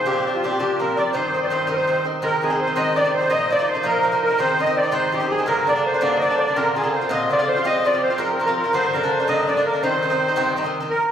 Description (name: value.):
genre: celtic folk, Celtic jig.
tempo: 111 BPM (dotted quarters).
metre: 6/8.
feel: straight.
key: C minor.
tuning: A4 = 439 Hz.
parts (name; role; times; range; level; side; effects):
musette accordion; melody; 0.0-11.1 s; F4 to F5; -20 LUFS; equal; none.
concert harp; second line; 0.0-11.1 s; F4 to Eb5; -24 LUFS; right 1 dB; none.
Irish bouzouki; accompaniment; 0.0-10.9 s; G2 to F4; -24 LUFS; equal; none.
room: wet recital hall reverb, RT60 1.5 s.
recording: recorded in a church or concert hall.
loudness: -18 LUFS.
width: side -9 dB against mid.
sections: 0.0-2.2 A section; 2.2-10.9 B section.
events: none.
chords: 0.1 Bbadd9; 1.1 Cm; 2.2 Ab; 3.3 Bbsus4; 4.4 Ab; 5.5 Gm; 6.6 Bbadd9; 7.6 Fm; 8.7 Gm; 9.8 Cm.